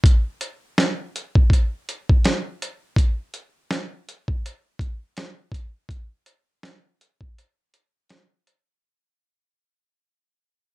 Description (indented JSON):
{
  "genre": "hip hop",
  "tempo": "82 BPM",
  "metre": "4/4",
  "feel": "swing 62% on 16ths",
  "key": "none",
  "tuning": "none",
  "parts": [
    { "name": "dusty soul sampler-style drum kit", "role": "drums", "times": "0.0-8.7 s", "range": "hi-hat, kick drum, snare drum", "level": "-18 LUFS", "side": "equal", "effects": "none" }
  ],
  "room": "light reverb",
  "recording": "cassette tape",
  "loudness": "-21 LUFS",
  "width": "side -21 dB against mid",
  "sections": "0.0-8.8 A section",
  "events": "fade-out 0.0-8.8; break 7.4-8.8",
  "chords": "none"
}